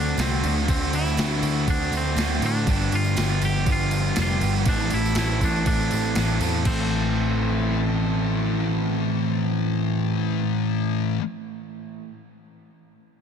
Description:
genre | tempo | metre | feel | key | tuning
rock, shoegaze and dream pop | 121 BPM | 4/4 | straight | A minor | A4 = 440 Hz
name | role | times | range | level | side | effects
twangy electric guitar | melody | 0.0-11.1 s | C4 to G4 | -30 LUFS | equal | tape echo
overdriven electric guitar | riff | 0.0-11.2 s | G2 to A4 | -28 LUFS | right 14 dB | reverse reverb
thick fuzz guitar | riff | 0.0-11.2 s | G2 to D4 | -26 LUFS | left 9 dB | distortion, lush chorus
vintage muted picked electric bass | bass | 0.0-11.1 s | F1 to A2 | -26 LUFS | equal | none
tambourine | percussion | 0.1-6.9 s | none | -42 LUFS | right 16 dB | none
gated 80s digital drum machine | drums | 0.2-6.8 s | crash cymbal, kick drum, snare drum | -27 LUFS | right 1 dB | gated reverb, gated reverb snare, overdrive
room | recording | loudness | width
little or no reverb | dense, heavily limited modern master | -20 LUFS | side -7 dB against mid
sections
0.0-6.7 A section; 6.7-10.6 B section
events
none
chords
0.0 D7; 2.7 G7; 4.7 Am

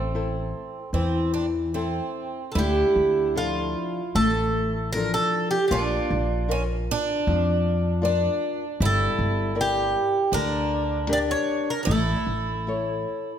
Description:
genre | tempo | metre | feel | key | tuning
fado-style ballad | 77 BPM | 4/4 | rubato | D harmonic minor | A4 = 442 Hz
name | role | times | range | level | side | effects
Irish bouzouki | melody | 0.0-13.4 s | F4 to D5 | -25 LUFS | right 2 dB | none
picked twelve-string acoustic guitar | second line | 0.0-13.4 s | C4 to E4 | -30 LUFS | right 3 dB | none
flamenco guitar | accompaniment | 0.0-13.3 s | D3 to F5 | -28 LUFS | left 4 dB | none
upright bass | bass | 0.0-13.0 s | G1 to F2 | -26 LUFS | equal | none
room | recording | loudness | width
moderate recital hall reverb, RT60 1.8 s | none | -22 LUFS | side -9 dB against mid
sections
0.0-2.6 A section; 2.6-13.4 B section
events
none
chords
0.0 Am; 2.6 Dm; 5.7 Bb; 8.8 Gm; 11.9 A

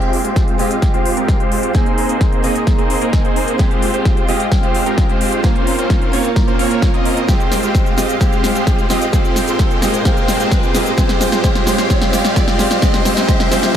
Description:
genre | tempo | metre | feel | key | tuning
EDM, festival progressive house | 130 BPM | 4/4 | straight | F minor | A4 = 440 Hz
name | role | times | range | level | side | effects
fingerpicked acoustic archtop guitar | accompaniment | 0.0-13.8 s | Ab3 to C5 | -22 LUFS | right 3 dB | sidechain pumping, ping-pong delay
lush unison pad | sustained chords | 0.2-13.8 s | Ab3 to F5 | -24 LUFS | right 1 dB | chorus, phaser, sidechain pumping
big supersaw lead | riff | 0.0-13.8 s | Ab3 to Eb5 | -19 LUFS | equal | sidechain pumping, low-pass filter, ping-pong delay
big-room dance drum kit | drums | 0.0-13.8 s | cabasa, hi-hat, snare drum | -22 LUFS | left 1 dB | overdrive
riser | sound effects | 0.0-13.8 s | none | -27 LUFS | left 1 dB | none
electronic kick drum | drums | 0.4-13.8 s | none | -16 LUFS | equal | overdrive
room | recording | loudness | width
light reverb | none | -13 LUFS | side -9 dB against mid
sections
0.0-13.8 A section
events
build-up 0.0-13.8; drum fill 0.0-13.8; riser 0.0-13.8; filter sweep on supersaw synth 0.0-13.8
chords
0.0 Fmadd9; 1.7 Abadd9; 3.6 Fmadd9; 5.4 Bbmadd9; 7.3 Fmadd9; 9.1 Abadd9; 11.0 Fmadd9; 12.8 Bbmadd9

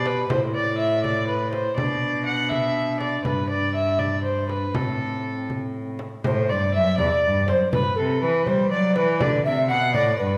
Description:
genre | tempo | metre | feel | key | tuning
classical, renaissance-style consort dance | 81 BPM (dotted quarters) | 6/8 | straight | A dorian | A4 = 440 Hz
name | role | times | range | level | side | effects
mellow hollow tenor recorder | melody | 0.0-10.4 s | C4 to F#5 | -28 LUFS | equal | none
dark violin | second line | 0.0-10.4 s | A4 to F#5 | -27 LUFS | equal | none
rich cello | bass | 0.0-10.4 s | E2 to G3 | -28 LUFS | equal | none
frame drum | percussion | 0.1-10.2 s | none | -32 LUFS | equal | none
room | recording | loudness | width
wet recital hall reverb, RT60 1.4 s | recorded in a church or concert hall | -23 LUFS | mono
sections
0.0-6.3 A section; 6.3-10.4 A section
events
none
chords
0.3 A5; 1.8 Bm; 3.3 G5; 4.8 Am; 6.3 A5; 7.7 Gmaj13; 9.2 D

